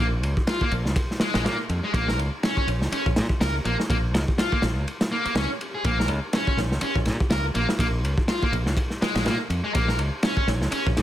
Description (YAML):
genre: breakbeat, breaks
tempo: 123 BPM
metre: 4/4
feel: swing 57% on 16ths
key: Bb minor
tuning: A4 = 440 Hz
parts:
  - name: distorted electric guitar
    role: riff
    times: 0.0-10.9 s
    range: Ab3 to Bb4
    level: -27 LUFS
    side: equal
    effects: distortion, digital delay
  - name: modern bright fingered electric bass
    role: bass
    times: 0.0-11.0 s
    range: Bb1 to Bb2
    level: -26 LUFS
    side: equal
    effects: none
  - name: crunchy breakbeat drum kit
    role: drums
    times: 0.2-11.0 s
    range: kick drum, ride cymbal, snare drum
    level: -25 LUFS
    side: equal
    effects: none
room: small room reverb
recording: none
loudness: -22 LUFS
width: side -12 dB against mid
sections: 0.0-11.0 A section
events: break 4.9-5.8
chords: 0.0 Bbm